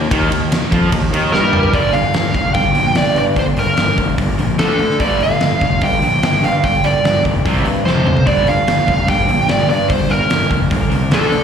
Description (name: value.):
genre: hard rock.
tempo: 147 BPM.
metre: 4/4.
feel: straight.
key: G minor.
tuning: A4 = 439 Hz.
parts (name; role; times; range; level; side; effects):
distorted electric guitar; riff; 0.0-11.4 s; F2 to D4; -22 LUFS; left 10 dB; distortion, slapback echo.
distorted electric guitar; riff; 0.0-11.4 s; F2 to D4; -21 LUFS; right 8 dB; distortion, slapback echo.
fuzz fingered electric bass; bass; 0.0-11.4 s; F1 to D3; -19 LUFS; left 1 dB; overdrive.
big rock drum kit; drums; 0.1-11.4 s; hi-hat, kick drum, ride cymbal, snare drum, toms; -19 LUFS; left 1 dB; none.
dark smooth lead guitar; melody; 1.3-11.4 s; A4 to G5; -17 LUFS; right 1 dB; overdrive, slapback echo, digital delay.
room: light reverb.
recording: live gig heard through the venue's PA, recital hall reverb.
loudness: -12 LUFS.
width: side -7 dB against mid.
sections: 0.0-1.7 A section; 1.7-11.4 B section.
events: drum fill 1.3-1.7, 7.9-8.3.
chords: 0.0 Eb5; 1.7 Gm; 4.6 D5; 5.0 G5; 7.5 C5; 7.9 F5; 8.3 G5.